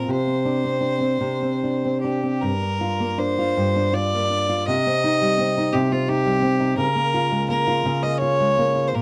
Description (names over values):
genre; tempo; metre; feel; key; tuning
celtic folk, Celtic slow air; 72-87 BPM; 3/4; rubato; C minor; A4 = 440 Hz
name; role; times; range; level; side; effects
clear fiddle; melody; 0.0-9.0 s; F4 to Eb5; -25 LUFS; equal; none
nylon-string guitar; accompaniment; 0.0-9.0 s; G2 to F4; -24 LUFS; equal; none
room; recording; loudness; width
little or no reverb; dark, warm production; -21 LUFS; mono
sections
0.0-2.4 A section; 2.4-9.0 B section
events
none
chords
0.1 Csus2; 2.4 Gm7; 4.7 Cm; 6.8 Db6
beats
| 0.11 0.85 1.64 | 2.44 3.21 3.95 | 4.68 5.41 6.11 | 6.80 7.51 8.23 | 8.96